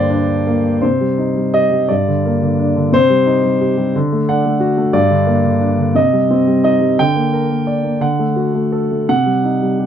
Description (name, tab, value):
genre	classical, lyrical solo piano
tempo	58 BPM (dotted quarters)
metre	6/8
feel	uneven beats, rubato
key	G harmonic minor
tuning	A4 = 440 Hz
part	dark baby grand piano	solo	0.0-9.9 s	G2 to G5	-13 LUFS	equal	none
room	light reverb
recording	dark, warm production, faint mains hum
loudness	-13 LUFS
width	side -9 dB against mid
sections	0.8-9.9 A section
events	grand piano fill 4.0-4.9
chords	0.0 Gm; 0.8 Cm; 1.9 Gm; 2.9 Cm; 4.0 D; 4.9 Gm; 6.0 Cm; 7.0 Gm/D; 8.0 D; 9.1 Cm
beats	| 0.83 1.90 | 2.94 3.95 | 4.95 5.95 | 6.98 8.01 | 9.08